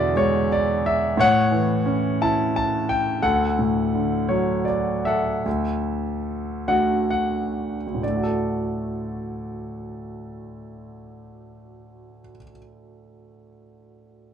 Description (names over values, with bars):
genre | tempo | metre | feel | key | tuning
classical, lyrical solo piano | 40-59 BPM (dotted quarters) | 6/8 | rubato | D major | A4 = 440 Hz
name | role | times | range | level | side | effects
clear grand piano | solo | 0.0-14.3 s | D2 to A5 | -21 LUFS | equal | none
room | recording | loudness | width
light reverb | dark, warm production | -20 LUFS | side -8 dB against mid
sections
0.0-5.5 A section; 5.5-8.0 B section; 8.0-13.8 C section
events
slowing down 3.2-8.0; grand piano fill 4.3-5.5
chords
0.0 E7; 1.2 A; 3.2 D